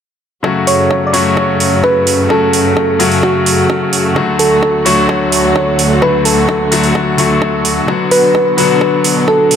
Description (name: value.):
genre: EDM, festival progressive house.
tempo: 129 BPM.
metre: 4/4.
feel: straight.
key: F# minor.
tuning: A4 = 440 Hz.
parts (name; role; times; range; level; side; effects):
bright concert grand piano; accompaniment; 0.4-9.6 s; C#3 to F#4; -14 LUFS; left 4 dB; sidechain pumping.
dark chamber string section; sustained chords; 0.4-9.6 s; D2 to F#4; -18 LUFS; right 3 dB; sidechain pumping.
electronic kick drum; drums; 0.4-9.4 s; none; -21 LUFS; right 1 dB; high-pass filter on kick, high-pass filter on room.
soft struck synth lead; melody; 0.7-9.6 s; F#4 to D5; -13 LUFS; right 1 dB; chorus, digital delay.
electronic hi-hat; drums; 0.7-9.6 s; none; -17 LUFS; right 6 dB; none.
room: light reverb, digital ambience.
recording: none.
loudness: -9 LUFS.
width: side -8 dB against mid.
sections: 0.4-9.6 A section.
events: none.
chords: 0.4 F#m; 4.2 D; 7.9 Bm.